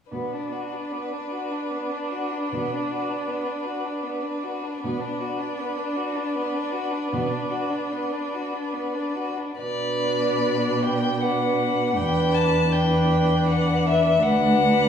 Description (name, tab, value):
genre	classical, slow romantic movement for string quartet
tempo	69-81 BPM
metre	3/4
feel	rubato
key	B minor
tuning	A4 = 439 Hz
part	rich violin	melody	0.1-14.9 s	B4 to A5	-27 LUFS	left 4 dB	none
part	rich violin	second line	0.1-14.9 s	B3 to B4	-28 LUFS	equal	none
part	rich viola	accompaniment	0.1-14.9 s	D4	-29 LUFS	right 2 dB	none
part	warm cello	bass	0.1-14.9 s	D2 to B2	-24 LUFS	equal	none
room	wet recital hall reverb, RT60 1.5 s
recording	heard from further back in the room, small room ambience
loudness	-22 LUFS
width	side -8 dB against mid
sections	0.1-9.6 A section; 9.6-14.9 B section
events	none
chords	0.1 Bm; 12.0 Em7; 14.2 Bm/D